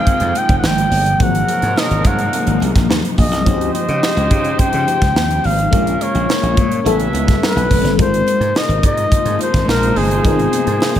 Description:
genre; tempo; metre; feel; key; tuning
polished 1980s jazz-funk pop; 106 BPM; 4/4; straight; Ab major; A4 = 436 Hz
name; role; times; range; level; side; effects
breathy flugelhorn; melody; 0.0-11.0 s; Ab4 to G5; -19 LUFS; left 2 dB; digital delay
mellow horn section; second line; 0.0-11.0 s; Eb3 to F5; -26 LUFS; right 6 dB; none
FM electric piano with soft pad layer; accompaniment; 0.0-11.0 s; F3 to G5; -21 LUFS; left 4 dB; phaser, lush chorus
warm studio string section; sustained chords; 0.0-11.0 s; C3 to G5; -26 LUFS; right 1 dB; none
slap bass; bass; 0.1-11.0 s; E1 to Db3; -19 LUFS; equal; none
crisp fusion drum kit; drums; 0.1-11.0 s; hi-hat, kick drum, snare drum; -18 LUFS; equal; gated reverb
congas; percussion; 0.1-10.9 s; none; -31 LUFS; right 4 dB; none
room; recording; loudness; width
small room ambience; none; -13 LUFS; side -10 dB against mid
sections
0.0-11.0 A section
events
none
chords
0.0 Fm9; 1.2 Ab13; 3.5 Dbmaj9#11; 5.7 Bbm7; 6.9 A9; 8.0 Ab69

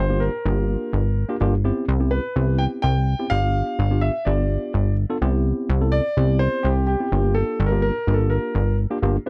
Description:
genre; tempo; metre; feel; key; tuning
dance-pop; 126 BPM; 4/4; straight; unclear; A4 = 445 Hz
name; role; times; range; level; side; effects
warm grand piano; melody; 0.0-8.7 s; G4 to G5; -28 LUFS; equal; none
plucky analog bass; bass; 0.0-9.2 s; G1 to C2; -22 LUFS; equal; none
tine electric piano; accompaniment; 0.1-9.3 s; Bb3 to A4; -28 LUFS; equal; none
room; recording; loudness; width
little or no reverb; dark, warm production; -21 LUFS; mono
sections
0.0-9.3 A section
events
none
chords
0.0 Gm7; 1.6 Cmaj7; 3.3 G7; 5.2 Cmaj7; 7.1 Gm7

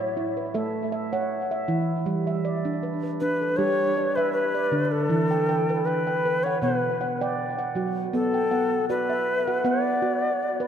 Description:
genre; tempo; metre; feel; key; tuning
world meditative, meditative tuned percussion; 79 BPM; 4/4; swing 53% on 16ths; B minor; A4 = 440 Hz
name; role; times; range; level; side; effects
Native American-style cedar flute; melody; 0.0-10.7 s; A4 to D5; -26 LUFS; left 2 dB; diffuse ambient delay
handpan; arpeggios; 0.0-10.7 s; B2 to G5; -25 LUFS; right 2 dB; diffuse ambient delay
room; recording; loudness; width
wet cathedral reverb, RT60 5.0 s; none; -22 LUFS; side -8 dB against mid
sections
0.0-8.1 A section; 8.1-10.7 B section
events
none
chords
0.0 A; 2.1 G; 5.1 Em; 6.6 Bm

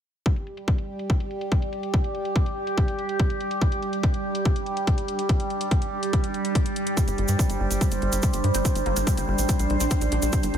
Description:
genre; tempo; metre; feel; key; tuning
psychedelic trance; 143 BPM; 4/4; straight; unclear; A4 = 440 Hz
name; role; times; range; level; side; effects
overtone-sweeping drone; sustained chords; 0.4-10.6 s; G3 to C5; -28 LUFS; right 2 dB; chorus, built-in reverb, sidechain pumping
electronic hi-hat; drums; 0.3-10.6 s; none; -36 LUFS; left 3 dB; overdrive, low-pass filter on hats, studio reverb
electronic kick drum; drums; 0.3-10.4 s; none; -23 LUFS; equal; studio reverb
granular cloud pad; texture; 2.2-10.6 s; G3 to D5; -34 LUFS; equal; built-in reverb, sidechain pumping
tube shaker; percussion; 7.0-10.5 s; none; -34 LUFS; right 4 dB; none
tight sequencer bass; bass; 7.1-10.6 s; G1 to G2; -25 LUFS; equal; none
resonant blip pluck; second line; 8.5-10.0 s; Bb3 to C4; -38 LUFS; left 3 dB; none
room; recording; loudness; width
light reverb; none; -22 LUFS; side -9 dB against mid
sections
0.3-10.6 A section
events
fade-in on ambient pad 0.3-10.6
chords
0.3 G5

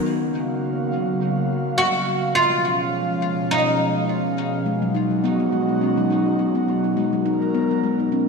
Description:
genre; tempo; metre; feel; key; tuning
downtempo; 104 BPM; 4/4; swing 56% on 16ths; unclear; A4 = 440 Hz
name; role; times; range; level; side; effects
airy breathy pad; sustained chords; 0.0-8.3 s; B2 to E#5; -23 LUFS; right 1 dB; chorus
oud; melody; 1.8-4.3 s; D#4 to F#4; -22 LUFS; equal; ping-pong delay
steel tongue drum; arpeggios; 4.7-8.3 s; F#3 to D#4; -22 LUFS; left 2 dB; vintage 12-bit sampler grit, ping-pong delay
room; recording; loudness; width
wet lush hall reverb, RT60 2.1 s; bright 1980s-style digital production; -19 LUFS; side -4 dB against mid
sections
0.0-8.3 A section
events
none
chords
0.0 F#maj7; 2.4 C#7; 4.7 G#m7; 7.0 Bmaj7

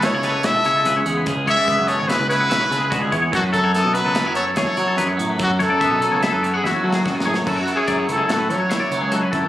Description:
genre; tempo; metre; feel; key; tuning
math rock and midwest emo; 145 BPM; 5/4; straight; F# minor; A4 = 440 Hz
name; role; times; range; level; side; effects
bright trumpet; melody; 0.0-9.3 s; F#4 to E5; -20 LUFS; left 1 dB; slapback echo
twangy electric guitar; accompaniment; 0.0-9.5 s; F#2 to B4; -24 LUFS; right 3 dB; ensemble chorus
twangy electric guitar; arpeggios; 0.0-9.5 s; F#4 to F#5; -24 LUFS; left 4 dB; none
modern studio drum kit; drums; 0.0-9.4 s; crash cymbal, hi-hat, kick drum, snare drum; -27 LUFS; equal; none
fuzz picked electric bass; bass; 0.1-9.5 s; G#1 to F#3; -25 LUFS; left 1 dB; overdrive
room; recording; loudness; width
light reverb; recorded on a phone in the room, club reverb, compression; -16 LUFS; side -13 dB against mid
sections
0.0-7.5 A section; 7.5-9.5 B section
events
drum fill 6.6-7.5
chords
0.0 C#m7; 3.3 F#m11

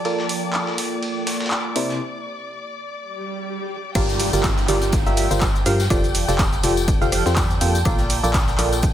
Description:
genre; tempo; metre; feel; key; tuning
piano house; 123 BPM; 4/4; swing 56% on 16ths; G minor; A4 = 437 Hz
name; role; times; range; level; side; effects
muted chamber violin section; sustained chords; 0.0-8.9 s; D5 to G6; -31 LUFS; left 2 dB; vintage 12-bit sampler grit, sidechain pumping
barking FM electric piano; riff; 0.0-8.8 s; C3 to G5; -23 LUFS; right 1 dB; chorus, phaser, tremolo, cassette tape, sidechain pumping, tape echo
warbly tape-like pad; texture; 0.0-8.9 s; Bb3 to A5; -32 LUFS; right 1 dB; chorus, built-in reverb, sidechain pumping
breakbeat sampler-style drum kit; drums; 0.1-8.9 s; hi-hat, ride cymbal, snare drum; -33 LUFS; right 1 dB; sidechain pumping on cymbals, high-pass filter on cymbals, low-pass filter on cymbals, high-pass filter on snare, low-pass filter on snare, sidechain pumping on hats, high-pass filter on hats, low-pass filter on hats, high-pass filter on room, low-pass filter on room
punchy analog drum machine; drums; 0.3-8.9 s; cabasa, crash cymbal, handclaps, hi-hat, rim click; -26 LUFS; equal; none
swell and downlifter; sound effects; 3.1-7.9 s; none; -32 LUFS; equal; none
organ-like FM bass; bass; 4.0-8.9 s; F1 to G2; -23 LUFS; equal; sidechain pumping
electronic kick drum; drums; 4.0-8.9 s; none; -22 LUFS; equal; none
tambourine; percussion; 4.0-8.9 s; none; -34 LUFS; left 6 dB; none
room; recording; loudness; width
light reverb; none; -18 LUFS; side -11 dB against mid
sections
0.0-4.0 A section; 4.0-8.9 B section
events
break 2.0-4.0; swell 3.1-4.0; drop 4.0-8.9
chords
0.1 Bbmaj7; 1.8 C7sus2; 4.0 Gm7; 5.9 F69; 7.9 Bbmaj7

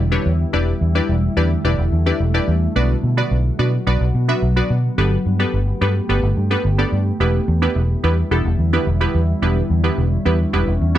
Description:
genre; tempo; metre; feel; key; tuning
pop; 108 BPM; 4/4; straight; E dorian; A4 = 440 Hz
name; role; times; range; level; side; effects
glassy FM pad; sustained chords; 0.0-11.0 s; D3 to G4; -24 LUFS; equal; ensemble chorus, built-in reverb
vintage muted fingered electric bass; bass; 0.0-11.0 s; E1 to B2; -17 LUFS; equal; none
wavetable chord stab; accompaniment; 0.1-11.0 s; B3 to E5; -21 LUFS; right 1 dB; none
room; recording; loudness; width
light reverb; nothing above 10.6 kHz; -16 LUFS; side -12 dB against mid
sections
0.0-11.0 A section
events
none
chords
0.0 Em7; 2.8 Bm; 5.0 Gadd9; 7.2 Em7

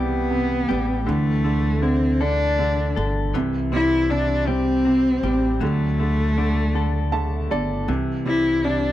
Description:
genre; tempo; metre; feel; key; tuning
six-eight pop ballad; 53 BPM (dotted quarters); 6/8; straight; unclear; A4 = 439 Hz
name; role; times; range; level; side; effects
dark cello; melody; 0.0-8.9 s; A3 to E4; -22 LUFS; left 1 dB; none
clear upright piano; accompaniment; 0.0-8.9 s; C3 to A5; -26 LUFS; right 5 dB; none
direct-recorded clean electric guitar; arpeggios; 0.0-8.9 s; E3 to A4; -31 LUFS; left 11 dB; spring reverb
upright bass; bass; 0.0-8.9 s; G1 to D2; -24 LUFS; equal; none
room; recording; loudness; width
small room ambience; dry, close 1970s-style studio recording; -19 LUFS; side -13 dB against mid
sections
0.0-8.9 A section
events
upright piano fill 6.8-7.9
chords
0.0 C; 1.1 Dsus2; 3.3 C; 5.6 D; 7.9 C

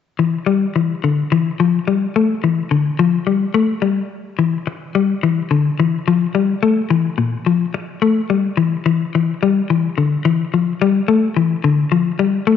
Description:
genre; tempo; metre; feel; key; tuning
afrobeat; 107 BPM; 4/4; swing 56% on 16ths; G dorian; A4 = 440 Hz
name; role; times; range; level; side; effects
clean electric guitar; arpeggios; 0.2-12.6 s; Bb2 to A3; -15 LUFS; left 6 dB; spring reverb
room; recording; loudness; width
moderate echo chamber reverb, RT60 1.7 s; nothing above 7.8 kHz; -15 LUFS; side -8 dB against mid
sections
0.2-12.6 A section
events
none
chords
none

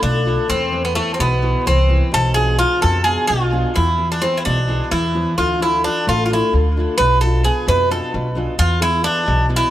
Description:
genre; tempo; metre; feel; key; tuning
greek folk, Greek bouzouki band; 260 BPM (eighths); 7/8; straight; unclear; A4 = 445 Hz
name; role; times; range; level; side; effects
Greek bouzouki; melody; 0.0-9.7 s; A3 to B4; -18 LUFS; equal; tape echo
picked steel-string acoustic guitar; accompaniment; 0.0-9.7 s; B2 to A4; -23 LUFS; left 2 dB; none
upright bass; bass; 0.0-9.6 s; A1 to F2; -19 LUFS; equal; none
room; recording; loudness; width
light reverb; none; -15 LUFS; side -13 dB against mid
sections
0.0-9.7 A section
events
speeding up 0.0-9.7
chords
0.5 E; 2.1 Bdim; 3.8 E; 5.4 Dm; 7.0 Bdim; 8.6 E

